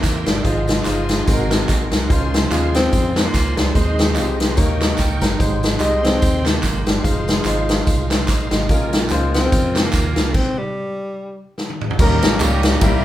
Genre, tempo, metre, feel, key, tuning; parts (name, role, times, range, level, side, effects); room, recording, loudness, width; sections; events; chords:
uptempo gospel; 146 BPM; 4/4; swing 57% on 8ths; Ab major; A4 = 438 Hz
breathy alto saxophone; melody; 0.0-11.4 s; G3 to C4; -24 LUFS; left 1 dB
clear concert grand piano; accompaniment; 0.0-13.0 s; Ab2 to Bb5; -23 LUFS; left 2 dB
bright tonewheel organ; sustained chords; 0.0-13.0 s; Ab3 to Db6; -28 LUFS; right 2 dB; slow rotary speaker, chorus vibrato
fingered electric bass; bass; 0.0-13.0 s; F1 to F2; -22 LUFS; right 1 dB
swinging big-band drum kit; drums; 0.0-12.9 s; crash cymbal, hi-hat, kick drum, ride cymbal, snare drum, toms; -18 LUFS; equal
handclaps and tambourine; percussion; 0.0-12.9 s; -30 LUFS; right 2 dB
mellow horn section; melody; 12.0-13.0 s; G3 to Bb4; -21 LUFS; equal
light reverb; band playing live in one room; -15 LUFS; side -13 dB against mid
0.0-12.0 A section; 12.0-13.0 B section
stop 10.3-12.0; drum fill 11.6-12.0
0.4 Fm7/Ab; 1.3 Ab9; 2.1 Dbmaj7; 3.7 Ab/Eb; 4.6 Eb7; 5.4 Abmaj7; 7.0 Fm7; 8.7 Bbm7; 10.3 N.C.; 12.0 Eb7